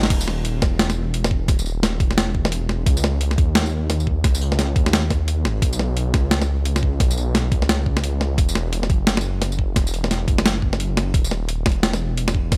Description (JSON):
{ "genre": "half-time drum and bass", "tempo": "174 BPM", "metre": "4/4", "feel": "swing 60% on 16ths, half-time", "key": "unclear", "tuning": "A4 = 440 Hz", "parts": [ { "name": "dark detuned saw bass", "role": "bass", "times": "0.0-12.6 s", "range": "Eb1 to Eb2", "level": "-24 LUFS", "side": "equal", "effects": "transformer saturation" }, { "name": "boom bap sampler-style drum kit", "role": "drums", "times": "0.0-12.6 s", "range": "crash cymbal, hi-hat, snare drum, tambourine", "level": "-24 LUFS", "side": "equal", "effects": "none" }, { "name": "electronic kick drum", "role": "drums", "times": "0.1-12.6 s", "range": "none", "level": "-22 LUFS", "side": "equal", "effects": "none" } ], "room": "digital ambience", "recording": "dry, gritty hardware recording", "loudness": "-20 LUFS", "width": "mono", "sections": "0.1-12.6 A section", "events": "drop 0.1-12.6", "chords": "none" }